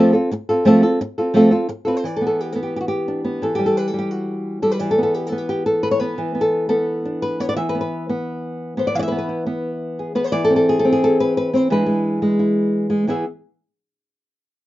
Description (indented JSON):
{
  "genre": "flamenco",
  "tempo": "174 BPM",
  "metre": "4/4",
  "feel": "straight",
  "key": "unclear",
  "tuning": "A4 = 439 Hz",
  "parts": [
    { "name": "flamenco guitar", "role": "solo", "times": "0.0-13.3 s", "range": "E3 to E5", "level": "-17 LUFS", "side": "equal", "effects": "none" }
  ],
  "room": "light reverb",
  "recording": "rough home demo mix, nothing above 7.5 kHz",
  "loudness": "-17 LUFS",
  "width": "side -16 dB against mid",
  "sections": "0.0-2.0 A section; 2.0-13.1 B section; 13.1-14.5 C section",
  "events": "none",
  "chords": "0.0 F; 2.0 Gadd9/E; 7.6 E5; 10.3 E7b13; 11.7 E7; 13.1 E",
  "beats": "0.30 | 0.65 1.00 1.34 1.69 | 2.03 2.38 2.73 3.07 | 3.42 3.77 4.11 4.46 | 4.80 5.15 5.50 5.84 | 6.19 6.53 6.88 7.22 | 7.57 7.92 8.26 8.61 | 8.95 9.30 9.64 9.99 | 10.33 10.68 11.02 11.37 | 11.71 12.05 12.40 12.74 | 13.09"
}